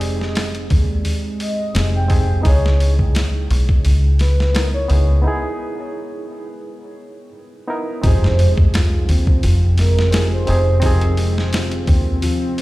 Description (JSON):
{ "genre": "trip hop", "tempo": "86 BPM", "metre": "4/4", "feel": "swing 54% on 16ths", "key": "unclear", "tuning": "A4 = 442 Hz", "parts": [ { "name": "barky reed electric piano", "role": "accompaniment", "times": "0.0-12.6 s", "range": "Cb4 to Bb4", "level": "-26 LUFS", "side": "right 1 dB", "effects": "overdrive, harmonic tremolo, tape echo" }, { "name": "deep dark ambient pad", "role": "sustained chords", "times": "0.0-12.6 s", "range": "Ab3 to C4", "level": "-30 LUFS", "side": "equal", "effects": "chorus, built-in reverb" }, { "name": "deep dub fingered electric bass", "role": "bass", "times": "0.0-12.2 s", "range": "F1 to Eb2", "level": "-16 LUFS", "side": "equal", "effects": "none" }, { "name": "boom bap sampler-style drum kit", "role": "drums", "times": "0.0-12.6 s", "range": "hi-hat, kick drum, snare drum", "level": "-20 LUFS", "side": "equal", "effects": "none" }, { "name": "pure breathy sine lead", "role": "melody", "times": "1.4-12.6 s", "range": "Bb4 to G5", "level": "-27 LUFS", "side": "right 1 dB", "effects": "analog chorus, tape echo" }, { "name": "felt-muted upright piano", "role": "arpeggios", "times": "8.0-12.6 s", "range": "F3 to F4", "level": "-27 LUFS", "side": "left 2 dB", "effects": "vintage 12-bit sampler grit, tape echo" }, { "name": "sub drop", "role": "sound effects", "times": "8.0-10.8 s", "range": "none", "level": "-21 LUFS", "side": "equal", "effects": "none" } ], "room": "little or no reverb", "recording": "played on a big sound system in a bare room, large studio reverb", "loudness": "-14 LUFS", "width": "side -18 dB against mid", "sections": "0.0-8.0 A section; 8.0-12.6 B section", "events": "break 5.2-8.0; impact 8.0-10.8", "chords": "0.0 Fm7; 2.5 Dbm7; 8.0 Fm7" }